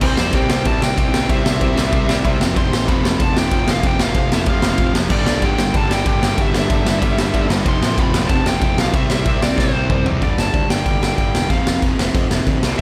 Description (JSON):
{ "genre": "punk rock", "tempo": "188 BPM", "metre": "4/4", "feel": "straight", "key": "C major", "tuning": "A4 = 441 Hz", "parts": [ { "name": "biting lead guitar", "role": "melody", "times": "0.0-12.8 s", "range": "C5 to C6", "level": "-26 LUFS", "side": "equal", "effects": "overdrive" }, { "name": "distorted electric guitar", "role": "riff", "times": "0.0-12.8 s", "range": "F2 to C4", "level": "-27 LUFS", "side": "equal", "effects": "distortion" }, { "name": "overdriven electric guitar", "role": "riff", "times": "0.0-10.2 s", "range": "F2 to C4", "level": "-28 LUFS", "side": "equal", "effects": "none" }, { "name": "raw garage guitar", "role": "riff", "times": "0.0-12.8 s", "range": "F2 to C4", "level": "-30 LUFS", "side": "equal", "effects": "none" }, { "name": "fuzz picked electric bass", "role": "bass", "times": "0.0-12.8 s", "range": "E1 to F2", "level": "-25 LUFS", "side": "equal", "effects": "overdrive" }, { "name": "raw garage drum kit", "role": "drums", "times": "0.0-12.8 s", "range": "crash cymbal, kick drum, ride cymbal, snare drum, toms", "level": "-20 LUFS", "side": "equal", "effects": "none" } ], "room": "little or no reverb", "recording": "none", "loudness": "-17 LUFS", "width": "mono", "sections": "0.0-10.2 A section; 10.2-12.8 B section", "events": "drum fill 9.6-10.2", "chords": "0.0 C; 2.4 F5; 5.1 G5; 7.7 F; 8.9 C; 10.2 G5; 11.5 F5" }